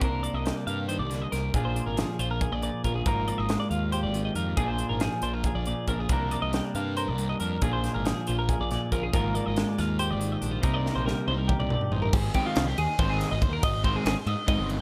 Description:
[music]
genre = math rock and midwest emo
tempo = 277 BPM (eighths)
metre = 7/8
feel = straight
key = unclear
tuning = A4 = 440 Hz
[part]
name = clean electric guitar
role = accompaniment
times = 0.0-13.6 s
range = G2 to Bb4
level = -33 LUFS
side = equal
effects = none
[part]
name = twelve-string electric guitar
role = arpeggios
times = 0.0-14.7 s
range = F4 to F5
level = -35 LUFS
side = equal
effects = lush chorus
[part]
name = fuzz picked electric bass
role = bass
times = 0.0-14.8 s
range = G1 to Ab2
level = -33 LUFS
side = equal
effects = overdrive
[part]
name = crisp fusion drum kit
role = drums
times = 0.0-14.8 s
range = crash cymbal, hi-hat, kick drum, ride cymbal, snare drum, toms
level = -32 LUFS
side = equal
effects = none
[part]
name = overdriven semi-hollow guitar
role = riff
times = 12.3-14.8 s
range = Eb3 to Eb4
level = -33 LUFS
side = equal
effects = none
[sound]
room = light reverb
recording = none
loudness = -27 LUFS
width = mono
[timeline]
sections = 0.0-12.1 A section; 12.1-14.8 B section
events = drum fill 10.9-12.1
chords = 0.0 Cm11; 1.5 Bb7; 3.1 Absus2; 4.6 Bb7; 6.1 Cm11; 7.6 Bb7; 9.1 Ab69; 10.6 Cm7; 12.1 Abmaj7

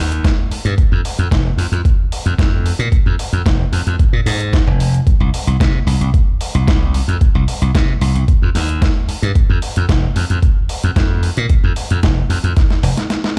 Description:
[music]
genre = nu-disco, nu disco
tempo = 112 BPM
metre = 4/4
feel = straight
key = unclear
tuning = A4 = 440 Hz
[part]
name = glassy slap bass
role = bass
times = 0.0-13.4 s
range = F1 to C3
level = -18 LUFS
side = equal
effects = none
[part]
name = dusty soul sampler-style drum kit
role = drums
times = 0.1-13.3 s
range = hi-hat, snare drum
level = -26 LUFS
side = equal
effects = overdrive
[part]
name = electronic kick drum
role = drums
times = 0.2-12.7 s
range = none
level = -16 LUFS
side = equal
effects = overdrive
[sound]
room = digital ambience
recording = played on a big sound system in a bare room, large studio reverb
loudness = -15 LUFS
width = mono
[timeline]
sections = 0.0-13.4 A section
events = drum fill 12.6-13.4; kick drops out 13.1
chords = none

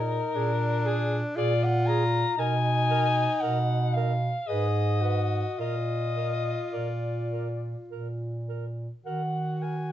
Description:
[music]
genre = classical, lyrical piece for single-reed quartet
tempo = 51-60 BPM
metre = 3/4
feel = rubato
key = unclear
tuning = A4 = 440 Hz
[part]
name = mellow soprano saxophone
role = melody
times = 0.0-9.9 s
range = Ab4 to Bb5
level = -29 LUFS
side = left 4 dB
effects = none
[part]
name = clear tenor saxophone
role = accompaniment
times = 0.0-9.9 s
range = D4 to Ab4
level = -32 LUFS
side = equal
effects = none
[part]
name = mellow bass clarinet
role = bass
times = 0.0-9.9 s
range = Ab2 to Eb3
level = -28 LUFS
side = right 1 dB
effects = none
[part]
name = warm alto saxophone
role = second line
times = 0.4-9.8 s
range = Ab4 to Cb5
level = -36 LUFS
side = right 11 dB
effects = none
[sound]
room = light reverb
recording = dark, warm production, nothing above 8.0 kHz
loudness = -25 LUFS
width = side -11 dB against mid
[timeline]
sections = 0.0-9.9 A section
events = none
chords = 0.0 Bb7; 2.4 Bmaj7; 4.5 Abm; 5.6 Bb; 9.0 Ebm

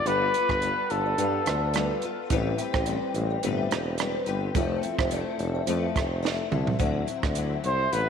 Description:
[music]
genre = indie pop, bedroom pop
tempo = 107 BPM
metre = 4/4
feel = swing 55% on 16ths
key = A minor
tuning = A4 = 440 Hz
[part]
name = breathy trumpet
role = melody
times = 0.0-2.0, 7.6-8.1 s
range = A4 to C5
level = -26 LUFS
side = left 2 dB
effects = wide subtle chorus, tape echo
[part]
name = picked steel-string acoustic guitar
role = accompaniment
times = 0.0-8.1 s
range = A2 to B4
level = -31 LUFS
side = left 9 dB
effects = ensemble chorus, vibrato effect
[part]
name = kalimba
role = second line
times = 0.1-6.6 s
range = E4 to E5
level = -35 LUFS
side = right 11 dB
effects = ensemble chorus, tape echo
[part]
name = warm tuba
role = bass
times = 0.1-8.1 s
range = E1 to G2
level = -29 LUFS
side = equal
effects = transformer saturation
[part]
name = compact cocktail drum kit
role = drums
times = 0.1-8.1 s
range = hi-hat, kick drum, rim click, snare drum, toms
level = -30 LUFS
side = right 3 dB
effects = none
[sound]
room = moderate echo chamber reverb, RT60 2.0 s, small room ambience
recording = 1960s-style stereo with parts hard left and right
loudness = -24 LUFS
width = side -7 dB against mid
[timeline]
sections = 0.0-6.8 A section; 6.8-8.1 B section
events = drum fill 6.2-6.8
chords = 0.0 G9; 2.3 Am9; 4.6 Fmaj7; 6.8 D9

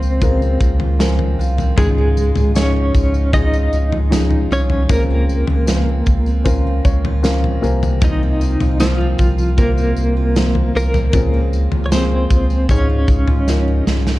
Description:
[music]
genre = pop ballad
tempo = 77 BPM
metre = 4/4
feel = straight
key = unclear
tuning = A4 = 440 Hz
[part]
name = direct-recorded clean electric guitar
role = melody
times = 0.0-13.8 s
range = F3 to Eb5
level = -21 LUFS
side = equal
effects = tremolo, tape echo
[part]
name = dark upright piano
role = accompaniment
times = 0.0-14.2 s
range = Ab2 to Ab5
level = -23 LUFS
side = left 3 dB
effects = none
[part]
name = picked steel-string acoustic guitar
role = arpeggios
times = 0.0-14.2 s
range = C3 to F4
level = -27 LUFS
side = right 6 dB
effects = none
[part]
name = saturated sub bass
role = bass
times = 0.0-14.2 s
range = C2 to Db2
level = -17 LUFS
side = equal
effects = none
[part]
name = tambourine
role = percussion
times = 0.0-14.2 s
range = none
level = -36 LUFS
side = left 7 dB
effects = none
[part]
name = modern studio drum kit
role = drums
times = 0.2-14.2 s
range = kick drum, snare drum, toms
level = -19 LUFS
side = equal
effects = none
[sound]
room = studio reverb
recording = dark, warm production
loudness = -13 LUFS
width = side -17 dB against mid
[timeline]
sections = 0.0-14.2 A section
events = upright piano fill 0.6-1.8, 6.5-8.0; drum fill 13.5-14.2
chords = 0.0 Bbmadd9/Db; 1.8 Dbadd9; 4.9 Bbmadd9/Db; 7.6 Fsus4/C; 11.1 Bbmadd9/Db; 12.7 Dbadd9

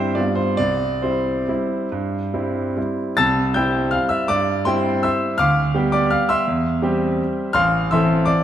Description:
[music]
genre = classical, piano waltz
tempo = 132-178 BPM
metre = 3/4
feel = rubato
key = C major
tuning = A4 = 440 Hz
[part]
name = clear grand piano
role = solo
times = 0.0-8.4 s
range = A1 to A6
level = -17 LUFS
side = equal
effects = none
[sound]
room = wet recital hall reverb, RT60 1.6 s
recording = none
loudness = -17 LUFS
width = side -10 dB against mid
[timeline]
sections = 0.0-3.2 A section; 3.2-8.4 B section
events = none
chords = 0.2 G7; 0.6 C; 5.4 G7/D; 6.5 C/E; 7.6 Am

